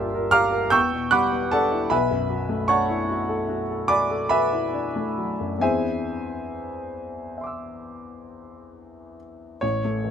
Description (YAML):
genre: classical, impressionist solo piano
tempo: 43-52 BPM (dotted quarters)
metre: 9/8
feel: rubato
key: unclear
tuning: A4 = 439 Hz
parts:
  - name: warm grand piano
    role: solo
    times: 0.0-10.1 s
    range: G1 to G6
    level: -21 LUFS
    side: equal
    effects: none
room: light reverb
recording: minimal, uncompressed stereo recording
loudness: -21 LUFS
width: side -8 dB against mid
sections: 0.0-9.6 A section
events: none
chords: 0.0 Gm7; 0.7 Em7; 1.9 Bm11; 5.6 Eaug7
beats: 0.72 | 1.91 3.09 4.32 | 5.61 6.94 8.27 | 9.62